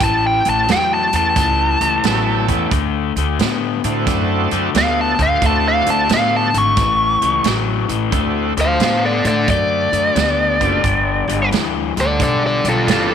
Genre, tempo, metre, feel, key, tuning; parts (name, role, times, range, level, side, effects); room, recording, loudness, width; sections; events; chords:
electric blues shuffle; 89 BPM; 4/4; swing 66% on 8ths; D major; A4 = 440 Hz
biting lead guitar; melody; 0.0-13.1 s; F4 to C#6; -17 LUFS; right 1 dB; overdrive
crunchy overdriven guitar; riff; 0.0-13.1 s; G2 to B3; -20 LUFS; left 14 dB
upright bass; bass; 0.0-13.1 s; F#1 to A2; -22 LUFS; right 1 dB
natural country drum kit; drums; 0.0-13.1 s; hi-hat, kick drum, snare drum; -22 LUFS; right 6 dB
bright tonewheel organ; accompaniment; 2.0-13.1 s; A3 to C6; -24 LUFS; right 13 dB; slow rotary speaker, overdrive
light reverb; 1960s-style stereo with parts hard left and right; -14 LUFS; side -8 dB against mid
0.0-8.1 A section; 8.1-13.1 A section
0.0 A9; 2.7 D9; 6.8 A; 8.1 D9; 10.8 G9